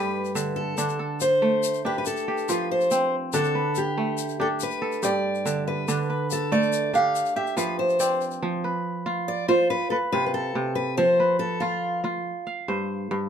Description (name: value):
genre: west african traditional, West African string and xylophone music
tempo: 94 BPM (dotted quarters)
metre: 12/8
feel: straight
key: F lydian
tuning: A4 = 440 Hz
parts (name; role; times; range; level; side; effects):
- picked steel-string acoustic guitar; melody; 0.0-12.1 s; F4 to F5; -24 LUFS; left 1 dB; none
- kora; arpeggios; 0.0-13.3 s; G2 to F5; -26 LUFS; right 2 dB; none
- tube shaker; percussion; 0.2-8.4 s; none; -34 LUFS; left 9 dB; none
room: moderate small room reverb, RT60 0.5 s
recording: minimal, uncompressed stereo recording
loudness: -22 LUFS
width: side -8 dB against mid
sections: 0.0-8.4 A section; 8.4-13.3 B section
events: none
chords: 0.0 G; 0.8 D5; 2.1 F; 3.3 D5; 4.6 G; 5.9 D5; 7.1 F5; 9.7 Amadd9; 11.0 F5; 12.3 G7sus4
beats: 0.14 | 0.78 1.41 2.05 2.69 | 3.33 3.96 4.60 5.24 | 5.88 6.51 7.15 7.79 | 8.42 9.06 9.70 10.34 | 10.98 11.62 12.26 12.89